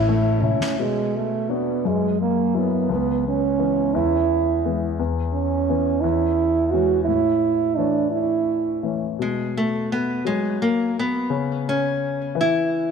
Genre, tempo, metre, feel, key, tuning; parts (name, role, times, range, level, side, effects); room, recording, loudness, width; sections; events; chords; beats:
acoustic folk-pop ballad; 57 BPM (dotted quarters); 6/8; straight; A4 = 441 Hz
nylon-string guitar; melody; 0.0-0.4, 9.2-12.9 s; G#3 to C#5; -22 LUFS; left 1 dB; tape echo
mellow French horn; second line; 0.0-8.9 s; G#3 to F#4; -21 LUFS; right 8 dB
warm concert grand piano; accompaniment; 0.0-12.9 s; C#2 to C#5; -24 LUFS; left 8 dB
upright bass; bass; 0.0-0.5 s; A1; -21 LUFS; left 1 dB
soft-mallet drum kit; drums; 0.1-0.8 s; ride cymbal, snare drum, toms; -31 LUFS; equal
wet echo chamber reverb, RT60 2.5 s; 1960s-style stereo with parts hard left and right; -19 LUFS; side -6 dB against mid
0.8-9.2 A section; 9.2-12.9 B section
drum fill 0.4-0.8; French horn solo 0.8-9.2
0.0 A; 0.8 Bm; 1.8 F#7; 2.9 C#m7; 3.9 E; 5.0 C#m7/E; 6.0 E6; 7.1 A; 9.2 N.C.
| 0.78 1.84 | 2.90 3.95 | 4.99 6.04 | 7.08 8.14 | 9.20 10.25 | 11.30 12.35